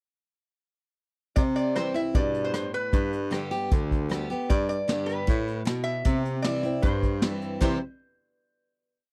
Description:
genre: honky-tonk and classic country.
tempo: 154 BPM.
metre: 4/4.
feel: straight.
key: C major.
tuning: A4 = 442 Hz.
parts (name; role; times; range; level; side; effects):
lap resonator guitar; second line; 1.4-7.8 s; B4 to E5; -33 LUFS; equal; none.
picked steel-string acoustic guitar; accompaniment; 1.4-7.8 s; G2 to G4; -32 LUFS; equal; none.
warm baritone saxophone; bass; 1.4-7.8 s; D2 to C3; -33 LUFS; equal; none.
vintage brush drum kit; drums; 1.4-7.7 s; hi-hat, kick drum, rim click, snare drum, splash cymbal; -27 LUFS; equal; none.
room: little or no reverb.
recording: dry, close 1970s-style studio recording.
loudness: -27 LUFS.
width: mono.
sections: 1.4-7.6 verse; 7.6-9.1 final chord.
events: resonator guitar played with a steel bar solo 1.4-7.6.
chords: 1.4 C; 2.9 G; 6.1 C.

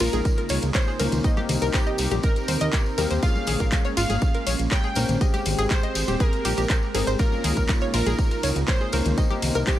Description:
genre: progressive house.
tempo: 121 BPM.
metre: 4/4.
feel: straight.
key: unclear.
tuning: A4 = 439 Hz.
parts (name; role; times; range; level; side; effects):
plucky unison lead; melody; 0.0-9.8 s; G4 to G5; -31 LUFS; equal; sidechain pumping, dub echo.
airy breathy pad; sustained chords; 0.0-9.8 s; C3 to Bb4; -32 LUFS; right 2 dB; chorus, sidechain pumping.
analog pluck; arpeggios; 0.0-9.7 s; F4 to Eb5; -30 LUFS; equal; chorus, sidechain pumping, dub echo.
felt-muted upright piano; stabs; 0.0-9.8 s; Ab3 to C5; -31 LUFS; left 4 dB; sidechain pumping.
fat analog bass; bass; 0.0-9.6 s; Eb1 to Eb2; -25 LUFS; equal; sidechain pumping.
house drum kit; drums; 0.0-9.8 s; handclaps, hi-hat, ride cymbal; -31 LUFS; equal; sidechain pumping on hats, sidechain pumping on cymbals.
tambourine; percussion; 0.0-9.8 s; none; -36 LUFS; left 3 dB; none.
congas; percussion; 0.1-9.8 s; none; -34 LUFS; left 2 dB; sidechain pumping on perc.
electronic kick drum; drums; 0.3-9.8 s; none; -22 LUFS; equal; none.
room: digital ambience.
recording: none.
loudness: -20 LUFS.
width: side -13 dB against mid.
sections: 0.0-9.8 A section.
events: none.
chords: 0.0 Db6; 1.2 Cm7; 3.2 Bbm7; 5.2 Abmaj7; 7.2 Db6; 9.2 Cm7.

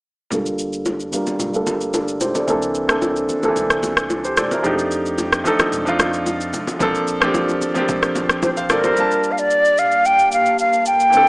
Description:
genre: amapiano.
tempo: 111 BPM.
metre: 4/4.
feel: straight.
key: G minor.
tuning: A4 = 440 Hz.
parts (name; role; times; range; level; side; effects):
clear concert grand piano; accompaniment; 0.3-11.3 s; D3 to A5; -20 LUFS; equal; low-pass filter.
warm sub bass; bass; 0.3-8.7 s; G1 to F2; -36 LUFS; equal; none.
deep house drum kit; drums; 0.3-11.3 s; kick drum, rim click, shaker; -22 LUFS; equal; none.
congas and bongos; percussion; 0.3-9.0 s; none; -26 LUFS; left 1 dB; none.
mellow silver concert flute; melody; 8.4-11.3 s; Bb4 to G5; -14 LUFS; equal; none.
deep dark ambient pad; sustained chords; 9.8-11.3 s; C3 to A5; -28 LUFS; equal; chorus, built-in reverb.
room: moderate digital room reverb, RT60 1.1 s, small room ambience.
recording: small speaker sound.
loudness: -16 LUFS.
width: side -26 dB against mid.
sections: 0.3-9.0 A section; 9.0-11.3 B section.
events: filter sweep on grand piano 0.3-9.0.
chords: 0.3 Gm9; 2.5 C13; 4.6 F13; 6.8 Bbmaj9.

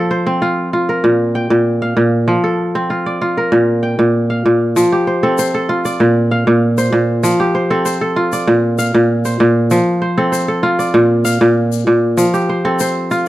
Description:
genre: west african traditional, West African string and xylophone music.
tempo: 97 BPM.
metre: 4/4.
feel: straight.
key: F major.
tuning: A4 = 440 Hz.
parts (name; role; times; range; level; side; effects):
kora; arpeggios; 0.0-13.3 s; Bb2 to G5; -12 LUFS; equal; none.
egg shaker; percussion; 4.8-13.2 s; none; -27 LUFS; left 18 dB; none.
room: studio ambience.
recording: dry, close 1970s-style studio recording.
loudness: -12 LUFS.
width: side -16 dB against mid.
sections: 0.0-4.8 A section; 4.8-13.3 B section.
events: none.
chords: 0.0 F; 1.0 Bb5; 2.3 F; 3.5 Bb5; 4.8 F; 6.0 Bb; 7.2 F; 8.5 Bb; 9.7 F; 10.9 Bb; 12.2 F.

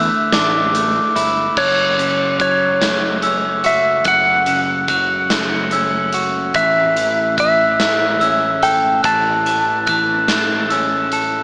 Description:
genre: post-rock.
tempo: 48 BPM (dotted quarters).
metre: 6/8.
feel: straight.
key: unclear.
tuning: A4 = 440 Hz.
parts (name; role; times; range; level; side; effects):
clean lap steel guitar; melody; 0.0-11.1 s; C#5 to A5; -20 LUFS; equal; analog delay.
electric guitar at the edge of break-up; arpeggios; 0.0-11.4 s; F#2 to A4; -25 LUFS; equal; analog delay.
glockenspiel with hard plastic mallets; arpeggios; 0.0-11.4 s; D6 to F#6; -21 LUFS; equal; analog delay.
growling fingered electric bass; bass; 0.0-11.4 s; F#1 to A1; -31 LUFS; equal; overdrive.
huge arena drum kit; drums; 0.3-11.3 s; crash cymbal, hi-hat, kick drum, snare drum; -24 LUFS; equal; none.
room: moderate plate reverb, RT60 2.4 s.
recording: small speaker sound.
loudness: -16 LUFS.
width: mono.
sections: 0.0-1.6 A section; 1.6-11.4 B section.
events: none.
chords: 0.0 Asus4; 1.6 F#m; 6.6 A.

